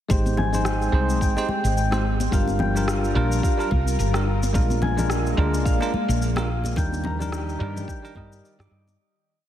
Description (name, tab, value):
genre	sunset chillout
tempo	108 BPM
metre	4/4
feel	swing 56% on 16ths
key	Ab lydian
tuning	A4 = 440 Hz
part	bell-like tine electric piano	accompaniment	0.1-9.0 s	G3 to D6	-28 LUFS	right 1 dB	auto-pan, tape echo
part	soft string machine	sustained chords	0.1-9.0 s	Eb3 to Bb4	-31 LUFS	left 1 dB	ensemble chorus
part	concert harp	arpeggios	0.1-9.5 s	F4 to Bb5	-30 LUFS	left 3 dB	tape echo
part	woody fretless electric bass	bass	0.1-8.9 s	G1 to G2	-24 LUFS	equal	ensemble chorus
part	electronic kick drum	drums	0.1-8.3 s	none	-24 LUFS	equal	none
part	electronic shaker, congas and rim click	drums	0.1-9.0 s	none	-31 LUFS	left 1 dB	none
part	congas	percussion	0.1-9.0 s	none	-33 LUFS	left 2 dB	none
room	moderate lush hall reverb, RT60 2.4 s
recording	heavily compressed radio sound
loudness	-20 LUFS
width	side -11 dB against mid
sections	0.1-9.0 groove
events	fade-out 6.0-9.0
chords	0.1 Abmaj7; 2.3 Gm7; 4.5 Bb7; 6.8 Ebmaj7